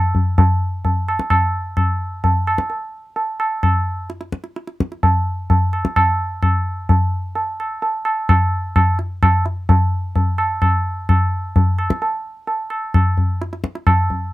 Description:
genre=indian classical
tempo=free time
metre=none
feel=none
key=none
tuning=none
part: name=tabla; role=percussion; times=0.1-14.3 s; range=none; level=-16 LUFS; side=equal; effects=none
room=light reverb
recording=close, detailed microphones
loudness=-16 LUFS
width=side -18 dB against mid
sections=0.0-14.3 A section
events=none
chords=none

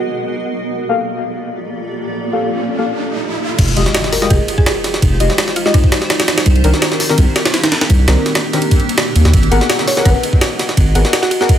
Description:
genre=drum and bass, jungle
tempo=167 BPM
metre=4/4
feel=swing 53% on 16ths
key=F dorian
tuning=A4 = 438 Hz
part: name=granular cloud pad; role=sustained chords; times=0.0-11.6 s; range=Bb3 to Eb5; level=-21 LUFS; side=right 1 dB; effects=built-in reverb
part: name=riser and impact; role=sound effects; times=1.8-5.0 s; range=none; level=-24 LUFS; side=right 1 dB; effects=none
part: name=deep mellow chord stab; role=stabs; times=0.9-11.5 s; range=Eb3 to Gb5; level=-20 LUFS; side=left 3 dB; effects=chorus, dub echo
part: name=saturated sub bass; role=bass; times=3.6-11.0 s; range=F1 to Eb2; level=-13 LUFS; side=equal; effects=none
part: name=jungle sampler-style drum kit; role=drums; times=3.6-11.6 s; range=crash cymbal, hi-hat, kick drum, ride cymbal, snare drum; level=-13 LUFS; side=equal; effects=none
part: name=mallet-like synth pluck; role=melody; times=4.1-6.1, 9.9-11.5 s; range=Eb4 to Db5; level=-22 LUFS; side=right 1 dB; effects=chorus, dub echo
room=light reverb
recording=none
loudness=-12 LUFS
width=side -10 dB against mid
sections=0.0-3.6 A section; 3.6-11.6 B section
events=filter sweep on ambient pad 0.0-3.6; riser 1.8-3.6; drop 3.6-11.6; impact 3.6-5.0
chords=0.0 Abm9; 0.7 Gm9; 3.6 Fm9; 6.5 Cm9; 9.3 Abm9

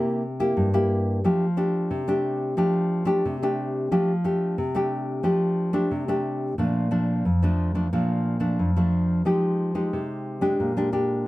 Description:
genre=samba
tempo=90 BPM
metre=4/4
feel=straight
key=F major, Bb major from 6.6 s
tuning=A4 = 440 Hz
part: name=nylon-string guitar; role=solo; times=0.0-11.3 s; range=F2 to G4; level=-22 LUFS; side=equal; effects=none
room=moderate studio reverb, RT60 0.6 s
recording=close, detailed microphones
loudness=-22 LUFS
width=side -18 dB against mid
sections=0.0-6.6 A section; 6.6-11.3 B section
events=none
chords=0.0 C7; 1.2 F69; 6.6 Bbmaj7; 9.3 Fm9; 10.6 Bb6

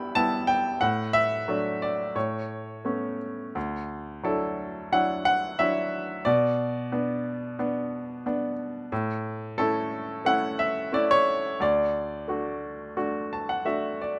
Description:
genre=classical, lyrical solo piano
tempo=89 BPM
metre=4/4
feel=rubato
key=D major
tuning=A4 = 440 Hz
part: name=bright upright piano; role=solo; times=0.0-14.2 s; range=D2 to B5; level=-27 LUFS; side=equal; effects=none
room=light reverb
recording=close, detailed microphones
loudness=-27 LUFS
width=mono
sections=0.0-14.2 A section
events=upright piano fill 13.0-14.2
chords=0.0 Em/G; 0.8 D/A; 2.2 Aadd9; 3.6 Dadd9; 6.3 Bm; 8.9 A; 11.6 D

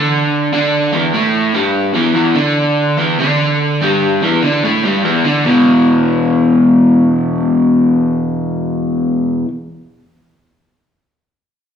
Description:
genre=rock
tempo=146 BPM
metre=4/4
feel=straight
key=unclear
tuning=A4 = 441 Hz
part: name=crunchy overdriven guitar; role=solo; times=0.0-9.5 s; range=E2 to D4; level=-11 LUFS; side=equal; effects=none
room=wet large studio reverb, RT60 1.3 s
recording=band playing live in one room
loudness=-11 LUFS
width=side -8 dB against mid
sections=0.0-5.4 A section; 5.4-8.7 B section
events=none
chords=0.0 Em7; 5.4 E5

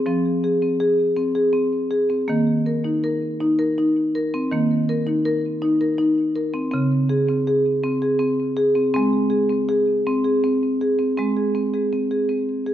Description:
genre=world meditative, meditative tuned percussion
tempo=54 BPM (dotted quarters)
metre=6/8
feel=straight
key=Ab major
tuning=A4 = 440 Hz
part: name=marimba with soft mallets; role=solo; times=0.0-12.7 s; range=Db3 to Bb4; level=-18 LUFS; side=equal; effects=ping-pong delay
room=moderate echo chamber reverb, RT60 1.6 s, small room reverb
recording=none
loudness=-18 LUFS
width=side -11 dB against mid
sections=0.0-11.2 A section; 11.2-12.7 B section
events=none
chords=0.0 Fm; 2.3 Eb5; 6.7 Db5; 9.0 Ab

